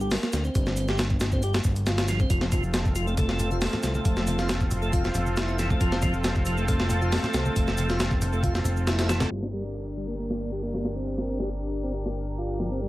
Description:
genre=breakbeat, breaks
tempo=137 BPM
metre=4/4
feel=straight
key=G minor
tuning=A4 = 440 Hz
part: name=tonewheel organ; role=riff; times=0.0-12.9 s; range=E3 to G4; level=-31 LUFS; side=equal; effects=slow rotary speaker, low-pass filter, tape echo
part: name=fat analog bass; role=bass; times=0.0-12.9 s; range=F1 to D2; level=-28 LUFS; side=equal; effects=none
part: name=shaker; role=drums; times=0.0-12.9 s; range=none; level=-43 LUFS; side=right 3 dB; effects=low-pass filter on perc, studio reverb, low-pass filter on room
part: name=breakbeat sampler-style drum kit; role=drums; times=0.1-12.9 s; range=hi-hat, kick drum, snare drum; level=-27 LUFS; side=equal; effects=low-pass filter on hats, studio reverb, low-pass filter on kick, low-pass filter on snare
part: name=lush unison pad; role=sustained chords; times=2.3-12.9 s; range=C4 to Bb4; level=-32 LUFS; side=equal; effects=chorus, sidechain pumping
part: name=congas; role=percussion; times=2.5-9.3 s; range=none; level=-34 LUFS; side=equal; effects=none
part: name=downlifter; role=sound effects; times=9.5-12.8 s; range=none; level=-56 LUFS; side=equal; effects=none
room=digital ambience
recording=vinyl crackle, low-pass filter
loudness=-23 LUFS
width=side -17 dB against mid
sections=0.0-9.3 A section; 9.3-12.9 B section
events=filter sweep on tonewheel organ 9.3-12.9; filter sweep 9.3-12.9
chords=0.0 Gm; 2.3 F; 9.3 Gm

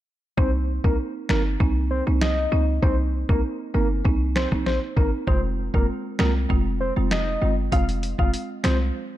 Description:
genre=dancehall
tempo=98 BPM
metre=4/4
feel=straight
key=C minor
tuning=A4 = 440 Hz
part: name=soft octave-layered synth lead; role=melody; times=0.4-8.8 s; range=Bb4 to F5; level=-28 LUFS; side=left 1 dB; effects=chorus, ping-pong delay
part: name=folk marimba with medium mallets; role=accompaniment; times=0.4-8.9 s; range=Ab3 to F4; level=-28 LUFS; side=right 4 dB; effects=none
part: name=short 808-style bass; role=bass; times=0.4-8.9 s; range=F1 to Db2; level=-23 LUFS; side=equal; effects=none
part: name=lo-fi sampler-style drum kit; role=drums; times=0.4-8.8 s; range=finger snaps, hi-hat, kick drum, snare drum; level=-24 LUFS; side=equal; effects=none
room=digital ambience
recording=dark, warm production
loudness=-20 LUFS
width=side -14 dB against mid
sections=0.4-9.2 A section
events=break 8.9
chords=0.4 Cm7; 5.3 Fm

